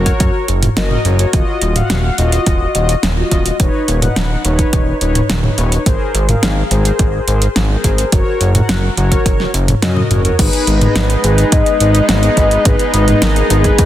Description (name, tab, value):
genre	synthwave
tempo	106 BPM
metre	4/4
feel	straight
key	unclear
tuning	A4 = 437 Hz
part	mellow synth brass	stabs	0.0-13.9 s	D#4 to Gb5	-18 LUFS	left 2 dB	chorus, tape echo
part	fat analog bass	bass	0.0-13.9 s	Eb1 to Ab2	-15 LUFS	equal	sidechain pumping
part	electronic kick drum	drums	0.1-13.9 s	none	-14 LUFS	equal	overdrive
part	pop drum kit	drums	0.1-13.9 s	crash cymbal, hi-hat, snare drum, toms	-17 LUFS	equal	overdrive
part	soft octave-layered synth lead	melody	10.4-13.9 s	Ab4 to Eb5	-17 LUFS	left 2 dB	chorus, tremolo, tape echo
part	lush unison pad	sustained chords	10.4-13.9 s	Ab3 to Eb4	-19 LUFS	equal	chorus, sidechain pumping
room	light reverb, digital ambience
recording	dense, heavily limited modern master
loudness	-11 LUFS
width	side -12 dB against mid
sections	0.0-10.4 A section; 10.4-13.9 B section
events	drum fill 9.8-10.4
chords	0.0 Gb; 1.3 Ebmadd9; 3.6 Badd9/D#; 5.9 Abadd9; 8.1 Gb; 10.4 Abm